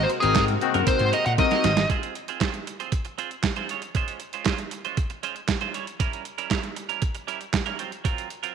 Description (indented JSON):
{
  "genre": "early-eighties boogie funk",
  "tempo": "117 BPM",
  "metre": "4/4",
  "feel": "straight",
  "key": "unclear",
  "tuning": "A4 = 440 Hz",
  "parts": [
    { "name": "nasal lead guitar with a parked wah", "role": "melody", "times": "0.0-1.9 s", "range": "Ab4 to Gb5", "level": "-24 LUFS", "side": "right 1 dB", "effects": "overdrive, slapback echo" },
    { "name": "chorused polysynth", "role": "accompaniment", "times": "0.0-1.7 s", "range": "Bb3 to Bb4", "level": "-27 LUFS", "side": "left 14 dB", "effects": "none" },
    { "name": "string machine, violins", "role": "sustained chords", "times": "0.0-1.9 s", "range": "C3 to Eb5", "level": "-33 LUFS", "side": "left 2 dB", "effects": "ensemble chorus" },
    { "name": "semi-hollow electric guitar", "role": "riff", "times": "0.0-8.5 s", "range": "Gb3 to Db5", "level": "-31 LUFS", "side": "right 11 dB", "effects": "analog chorus" },
    { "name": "vintage slap bass", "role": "bass", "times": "0.0-1.8 s", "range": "Ab1 to Bb2", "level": "-25 LUFS", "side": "left 1 dB", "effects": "none" },
    { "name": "detuned 8-bit digital drum machine", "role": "drums", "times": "0.1-8.5 s", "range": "handclaps, hi-hat, kick drum, snare drum", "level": "-26 LUFS", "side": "right 4 dB", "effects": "none" },
    { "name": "clear horn section", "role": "second line", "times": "0.6-0.8 s", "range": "Eb3 to Gb4", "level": "-29 LUFS", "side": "left 12 dB", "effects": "none" }
  ],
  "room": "light reverb, digital ambience",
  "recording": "1960s-style stereo with parts hard left and right",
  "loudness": "-23 LUFS",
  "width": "side -7 dB against mid",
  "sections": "0.0-1.9 A section; 1.9-8.5 B section",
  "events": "lead electric guitar solo 0.0-1.9; drum fill 1.4-1.9",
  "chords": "0.0 Ab9; 1.9 Fm/C; 3.7 Dbmaj7/Ab; 5.7 Gdim7; 7.8 Gbmaj7#11"
}